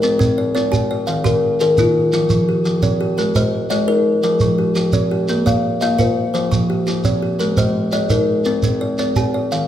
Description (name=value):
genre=southern african traditional, mbira-style interlocking cycle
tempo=114 BPM (dotted quarters)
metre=12/8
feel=straight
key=F equiheptatonic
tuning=A4 = 438 Hz
part: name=kalimba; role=arpeggios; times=0.0-9.7 s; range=Eb3+29c to F5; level=-18 LUFS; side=left 3 dB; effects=none
part: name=kalimba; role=arpeggios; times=0.0-9.7 s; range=Eb3+29c to Ab5+43c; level=-20 LUFS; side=right 3 dB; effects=none
part: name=shekere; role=percussion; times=0.0-9.7 s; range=none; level=-21 LUFS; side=right 2 dB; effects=none
room=wet recital hall reverb, RT60 1.7 s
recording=recorded in a church or concert hall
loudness=-15 LUFS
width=side -11 dB against mid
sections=0.0-9.7 A section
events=none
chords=0.0 C5; 1.1 Eb; 2.1 F5; 3.2 Ab; 4.2 Fm; 5.3 Bb; 6.3 F5; 7.4 Ab; 8.5 C5